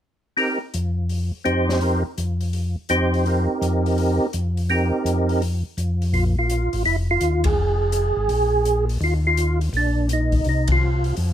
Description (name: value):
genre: soul jazz organ trio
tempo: 167 BPM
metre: 4/4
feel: swing 66% on 8ths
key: unclear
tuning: A4 = 439 Hz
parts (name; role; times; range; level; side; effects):
- percussive tonewheel organ; melody; 0.4-11.2 s; C4 to C5; -21 LUFS; right 2 dB; slow rotary speaker, chorus vibrato
- open jazz drum kit; drums; 0.4-11.3 s; hi-hat, kick drum, ride cymbal, snare drum; -29 LUFS; left 2 dB; none
- tonewheel organ; bass; 0.7-11.3 s; F1 to F2; -21 LUFS; left 1 dB; chorus vibrato, slow rotary speaker
room: light reverb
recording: none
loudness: -19 LUFS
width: side -10 dB against mid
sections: 0.4-6.1 A section; 6.1-11.3 B section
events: band accent 7.4, 10.6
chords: 0.4 F7sus4; 5.4 N.C.; 6.1 Bb5; 7.6 Fm; 8.3 Absus2/Bb; 9.0 Ebsus2; 10.5 Csus4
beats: | 0.37 0.73 1.09 1.46 | 1.82 2.18 2.54 2.90 | 3.26 3.62 3.98 4.34 | 4.70 5.06 5.42 5.78 | 6.14 6.50 6.86 7.22 | 7.58 7.94 8.29 8.65 | 9.01 9.37 9.73 10.09 | 10.45 10.81 11.17